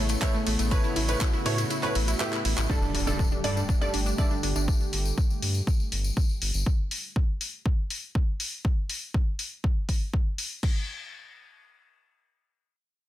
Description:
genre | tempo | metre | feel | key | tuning
progressive house | 121 BPM | 4/4 | straight | unclear | A4 = 438 Hz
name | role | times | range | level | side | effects
warm analog pad | sustained chords | 0.0-6.6 s | C#3 to G4 | -35 LUFS | equal | chorus, sidechain pumping
wide unison pluck | arpeggios | 0.0-4.6 s | A3 to D5 | -32 LUFS | equal | sidechain pumping, tape echo
round analog bass | bass | 0.0-6.6 s | G1 to A2 | -28 LUFS | equal | sidechain pumping
deep house drum kit | drums | 0.1-10.7 s | crash cymbal, handclaps, hi-hat, ride cymbal | -32 LUFS | left 1 dB | none
tambourine | percussion | 0.1-6.6 s | none | -39 LUFS | left 6 dB | none
bright concert grand piano | stabs | 0.2-4.3 s | G2 to E5 | -33 LUFS | right 3 dB | sidechain pumping, low-pass filter, tape echo
electronic kick drum | drums | 0.2-10.7 s | none | -25 LUFS | equal | overdrive
impact | sound effects | 2.7-4.7 s | none | -37 LUFS | equal | none
room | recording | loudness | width
little or no reverb | dense, heavily limited modern master | -24 LUFS | side -14 dB against mid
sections
0.0-2.7 A section; 2.7-10.6 B section; 10.6-13.1 C section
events
drop 0.0-2.7; kick drops out 1.7-2.7; drum fill 2.3-2.7; impact 2.7-4.7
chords
0.0 Aadd9; 2.7 Gsus2; 6.7 N.C.

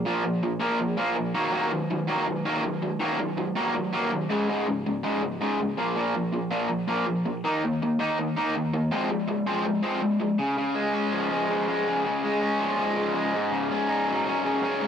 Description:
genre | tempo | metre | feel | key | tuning
rock | 163 BPM | 4/4 | straight | unclear | A4 = 440 Hz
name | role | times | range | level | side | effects
raw garage guitar | solo | 0.0-14.9 s | Ab2 to Eb4 | -24 LUFS | equal | overdrive, tape echo
room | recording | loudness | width
moderate small room reverb, RT60 0.5 s | home recording on cassette | -24 LUFS | side -8 dB against mid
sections
0.0-10.4 A section; 10.4-14.9 B section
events
none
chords
0.0 Bb5; 1.3 Ebm; 4.3 Absus4; 5.8 Bb5; 7.4 Eb5; 8.9 Fm; 10.4 Db; 13.3 Ab7sus4

